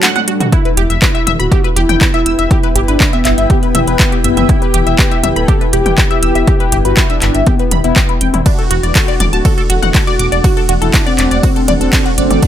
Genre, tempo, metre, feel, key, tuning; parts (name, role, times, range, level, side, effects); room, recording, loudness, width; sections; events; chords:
melodic techno; 121 BPM; 4/4; straight; E minor; A4 = 440 Hz
mellow synth brass; melody; 0.0-12.5 s; F#3 to A4; -18 LUFS; left 1 dB; chorus, sidechain pumping, ping-pong delay
dark analog pad; sustained chords; 0.0-12.5 s; A3 to G4; -23 LUFS; equal; chorus, phaser, sidechain pumping
tight sequenced synth; arpeggios; 0.0-12.5 s; D4 to E6; -18 LUFS; left 1 dB; chorus, phaser, cassette tape, sidechain pumping, ping-pong delay
house drum kit; drums; 0.0-12.5 s; handclaps, hi-hat, ride cymbal, toms; -17 LUFS; equal; overdrive
granular cloud pad; texture; 0.0-12.5 s; D4 to G5; -22 LUFS; equal; built-in reverb, sidechain pumping
electronic kick drum; drums; 0.5-12.5 s; -13 LUFS; equal; overdrive
dark detuned saw bass; bass; 0.8-12.4 s; D1 to G1; -16 LUFS; equal; sidechain pumping
digital ambience; -9 LUFS; side -10 dB against mid
0.0-12.5 A section
break 0.0-0.5; drum fill 0.0-0.5
0.0 D; 0.5 Em; 8.5 D